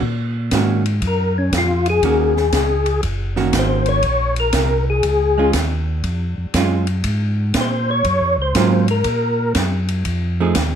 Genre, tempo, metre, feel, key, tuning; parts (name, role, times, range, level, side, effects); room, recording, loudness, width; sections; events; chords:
soul jazz organ trio; 120 BPM; 4/4; swing 66% on 8ths; Bb minor; A4 = 440 Hz
mellow tonewheel organ; bass; 0.0-10.8 s; Gb1 to Bb2; -20 LUFS; equal; chorus vibrato, slow rotary speaker
open jazz drum kit; drums; 0.0-10.7 s; hi-hat, kick drum, ride cymbal, snare drum; -24 LUFS; equal
archtop guitar, miked and amplified; accompaniment; 0.5-10.6 s; Eb3 to G#4; -20 LUFS; right 6 dB
percussive tonewheel organ; melody; 1.1-9.5 s; Db4 to Db5; -18 LUFS; left 3 dB; slow rotary speaker, chorus vibrato
light reverb; dark, warm production; -16 LUFS; side -8 dB against mid
0.0-10.8 A section
tonewheel organ solo 0.0-10.8
0.0 Ebm7; 4.0 Bbm7; 8.1 Gbmaj7; 10.1 F7#9